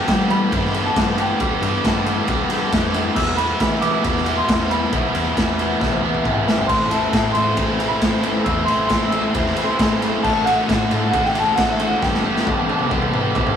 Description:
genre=indie rock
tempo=136 BPM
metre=4/4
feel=straight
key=G major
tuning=A4 = 435 Hz
part: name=dark upright piano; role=melody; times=0.0-13.5 s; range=E5 to E6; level=-23 LUFS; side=equal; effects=none
part: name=biting overdriven guitar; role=riff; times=0.0-13.6 s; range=E2 to G4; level=-25 LUFS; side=left 6 dB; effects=none
part: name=distorted electric guitar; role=riff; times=0.0-13.6 s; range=G2 to G4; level=-22 LUFS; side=right 3 dB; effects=distortion
part: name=metallic FM bass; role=bass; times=0.1-13.6 s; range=G1 to G3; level=-28 LUFS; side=left 1 dB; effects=none
part: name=raw garage drum kit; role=drums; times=0.1-13.6 s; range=crash cymbal, kick drum, ride cymbal, snare drum, toms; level=-21 LUFS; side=equal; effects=none
room=moderate studio reverb, RT60 0.5 s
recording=rough rehearsal-room recording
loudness=-16 LUFS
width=side -8 dB against mid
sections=0.0-13.6 A section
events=drum fill 5.8-6.7, 12.0-13.6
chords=0.0 G; 3.2 Em; 6.7 Am; 10.2 D/A; 12.0 G

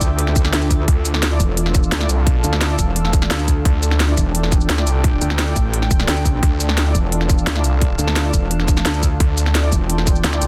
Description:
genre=dark technical drum and bass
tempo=173 BPM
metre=4/4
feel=straight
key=D minor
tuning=A4 = 440 Hz
part: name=dark analog pad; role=sustained chords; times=0.0-10.5 s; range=D4 to G5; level=-30 LUFS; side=equal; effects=chorus, sidechain pumping
part: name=warm brass ensemble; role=stabs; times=0.0-10.4 s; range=A3 to D5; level=-33 LUFS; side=equal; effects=delay
part: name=metallic wobble bass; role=bass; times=0.0-10.2 s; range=E1 to D2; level=-22 LUFS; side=equal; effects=chorus, tube saturation
part: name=drum and bass drum kit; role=drums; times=0.0-10.5 s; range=hi-hat, shaker, snare drum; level=-24 LUFS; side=equal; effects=none
part: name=electronic kick drum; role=drums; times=0.0-10.1 s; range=none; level=-19 LUFS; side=equal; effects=none
part: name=warbly tape-like pad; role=texture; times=0.0-10.5 s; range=D4 to E6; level=-31 LUFS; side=equal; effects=chorus, built-in reverb, sidechain pumping
part: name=snarling distorted saw bass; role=bass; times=0.9-10.5 s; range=C2 to D2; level=-20 LUFS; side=equal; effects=distortion, tube saturation
room=little or no reverb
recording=dense, heavily limited modern master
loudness=-17 LUFS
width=mono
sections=0.0-10.5 A section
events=none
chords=0.0 Dmadd9

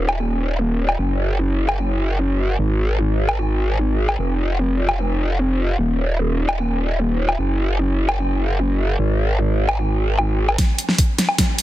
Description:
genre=heavy wobble dubstep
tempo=150 BPM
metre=4/4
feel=half-time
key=unclear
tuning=A4 = 440 Hz
part: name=growl bass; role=bass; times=0.0-10.6 s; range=Eb1 to Ab1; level=-18 LUFS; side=equal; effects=chorus, overdrive
part: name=dubstep drum kit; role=drums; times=0.1-11.6 s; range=hi-hat, snare drum, woodblock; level=-23 LUFS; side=left 1 dB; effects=none
part: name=electronic kick drum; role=drums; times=10.6-11.5 s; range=none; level=-18 LUFS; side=equal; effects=overdrive
room=little or no reverb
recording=dense, heavily limited modern master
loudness=-17 LUFS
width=side -14 dB against mid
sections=0.0-10.6 A section; 10.6-11.6 B section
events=build-up 10.6-11.6; drum fill 10.6-11.6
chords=none

